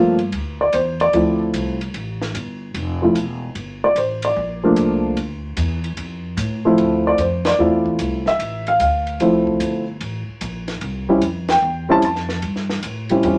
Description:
jazz piano trio; 149 BPM; 4/4; swing 67% on 8ths; D minor; A4 = 440 Hz
dark upright piano; melody; 0.0-13.4 s; F3 to A5; -18 LUFS; equal
upright bass; bass; 0.0-13.4 s; E1 to A2; -28 LUFS; equal
compact cocktail drum kit; drums; 0.2-13.4 s; hi-hat, kick drum, ride cymbal, snare drum; -33 LUFS; equal
moderate studio reverb, RT60 0.5 s; -20 LUFS; mono
0.0-13.4 A section
band accent 7.4, 11.4
0.3 Dm9; 3.6 Gm9; 6.8 Dm9; 10.0 Am7

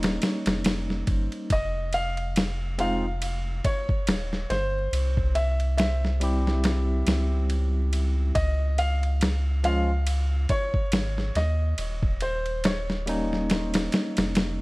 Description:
trip hop; 70 BPM; 4/4; swing 57% on 16ths; A4 = 440 Hz
felt-muted upright piano; melody; 0.0-14.3 s; C5 to F5; -31 LUFS; equal; tape echo
barky tine electric piano; accompaniment; 0.0-14.6 s; F3 to G4; -30 LUFS; equal; harmonic tremolo, tape echo
soft dub sub bass; bass; 0.0-14.6 s; Eb1 to Eb2; -26 LUFS; equal
dusty soul sampler-style drum kit; drums; 0.0-14.6 s; kick drum, ride cymbal, snare drum; -27 LUFS; equal
digital ambience; vinyl crackle; -23 LUFS; side -23 dB against mid
0.0-14.6 A section
0.0 Eb7; 1.5 F7(no3); 4.9 C; 8.4 Db; 11.8 Eb7

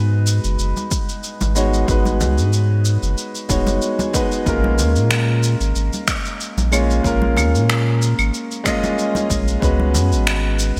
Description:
sunset chillout; 93 BPM; 4/4; swing 54% on 16ths; A4 = 440 Hz
warm concert grand piano; accompaniment; 0.0-10.8 s; G#3 to D#5; -24 LUFS; equal; delay
warm sub bass; bass; 0.0-10.8 s; D#1 to A#2; -20 LUFS; equal
electronic shaker, finger snaps and claves; drums; 0.3-10.8 s; -26 LUFS; equal; gated reverb
congas; percussion; 0.8-10.1 s; -30 LUFS; equal
electronic kick drum; drums; 0.9-9.8 s; -25 LUFS; equal; overdrive
moderate lush hall reverb, RT60 2.5 s; bright 1980s-style digital production; -18 LUFS; mono
0.0-10.8 A section
0.0 G#m7; 4.5 A#m7; 9.6 C#7sus4

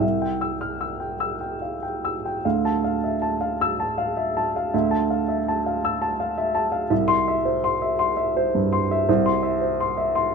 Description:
neoclassical minimalist piano; 49-57 BPM (dotted quarters); 6/8; rubato; D minor; A4 = 439 Hz
dark upright piano; solo; 0.0-10.3 s; C2 to F6; -21 LUFS; equal
moderate stone room reverb, RT60 0.9 s; band playing live in one room; -21 LUFS; side -5 dB against mid
0.0-2.4 A section; 2.4-10.3 B section
0.0 C; 2.4 Dmadd9; 6.9 C

